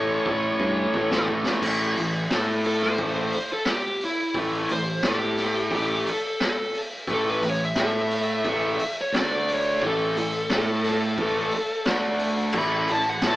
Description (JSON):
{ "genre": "hard rock", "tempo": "88 BPM", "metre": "4/4", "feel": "straight", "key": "A mixolydian", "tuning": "A4 = 439 Hz", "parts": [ { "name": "high-gain lead guitar", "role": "melody", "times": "0.0-13.4 s", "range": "E4 to B5", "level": "-27 LUFS", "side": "equal", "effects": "distortion, digital delay" }, { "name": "overdriven electric guitar", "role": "riff", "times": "0.0-13.4 s", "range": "A2 to A4", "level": "-25 LUFS", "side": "equal", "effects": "none" }, { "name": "modern bright picked electric bass", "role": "bass", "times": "0.0-13.4 s", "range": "A1 to A2", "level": "-33 LUFS", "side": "equal", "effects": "none" }, { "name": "raw garage drum kit", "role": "drums", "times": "0.3-13.4 s", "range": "crash cymbal, hi-hat, kick drum, snare drum", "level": "-28 LUFS", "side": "equal", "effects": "none" } ], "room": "moderate studio reverb, RT60 0.8 s", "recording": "band playing live in one room, AM radio sound", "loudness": "-22 LUFS", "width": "side -16 dB against mid", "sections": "0.0-1.6 A section; 1.6-13.4 B section", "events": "drum fill 0.3-1.6; lead electric guitar solo 1.6-13.4", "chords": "0.0 A; 1.6 A5; 9.1 D5; 9.8 A5; 11.9 D5; 12.6 A5" }